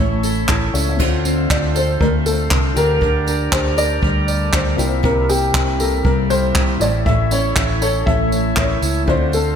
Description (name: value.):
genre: acoustic pop.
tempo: 119 BPM.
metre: 4/4.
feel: swing 60% on 16ths.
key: D minor.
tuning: A4 = 442 Hz.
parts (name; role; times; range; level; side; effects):
dark baby grand piano; accompaniment; 0.0-9.6 s; A3 to A5; -29 LUFS; left 6 dB; lush chorus.
nylon-string guitar; accompaniment; 0.0-9.6 s; A2 to Bb4; -22 LUFS; equal; double-tracked left and right.
tonewheel organ; sustained chords; 0.0-9.6 s; C3 to Bb4; -26 LUFS; right 1 dB; overdrive, slow rotary speaker.
vintage muted fingered electric bass; bass; 0.0-9.5 s; A1 to D2; -21 LUFS; equal; none.
jazz brush drum kit; drums; 0.2-9.5 s; crash cymbal, handclaps, kick drum, tambourine; -20 LUFS; equal; none.
dark upright piano; melody; 1.5-9.6 s; G4 to E5; -21 LUFS; left 2 dB; diffuse ambient delay.
room: moderate lush hall reverb, RT60 1.8 s, small room ambience.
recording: dreamy mix soaked in reverb.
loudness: -15 LUFS.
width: side -8 dB against mid.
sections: 1.0-9.6 A section.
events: grand piano fill 0.2-1.0.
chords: 0.0 A; 1.0 Dm7; 2.8 Gm/D; 4.8 C7; 6.8 A.